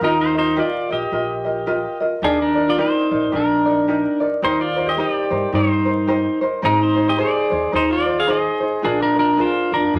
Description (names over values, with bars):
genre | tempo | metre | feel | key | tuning
Hawaiian | 109 BPM | 4/4 | swing 60% on 8ths | Eb major | A4 = 445 Hz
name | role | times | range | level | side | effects
pedal steel guitar | melody | 0.0-10.0 s | D4 to F5 | -23 LUFS | equal | none
vibraphone with medium hard mallets | second line | 0.0-10.0 s | D4 to Ab4 | -23 LUFS | equal | none
tenor ukulele | accompaniment | 0.0-10.0 s | D4 to Eb5 | -24 LUFS | equal | none
upright bass | bass | 0.0-10.0 s | Ab1 to G2 | -31 LUFS | equal | none
room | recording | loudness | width
wet studio reverb, RT60 0.8 s | vinyl crackle | -19 LUFS | mono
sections
0.0-2.2 A section; 2.2-10.0 A section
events
none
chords
0.0 Ebadd9; 2.2 Ebmaj7; 4.4 Cm7/Eb; 6.6 Abadd9; 8.8 Bb7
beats
| 0.02 0.57 1.12 1.67 | 2.22 2.77 3.32 3.88 | 4.43 4.98 5.53 6.08 | 6.63 7.18 7.73 8.28 | 8.83 9.38 9.94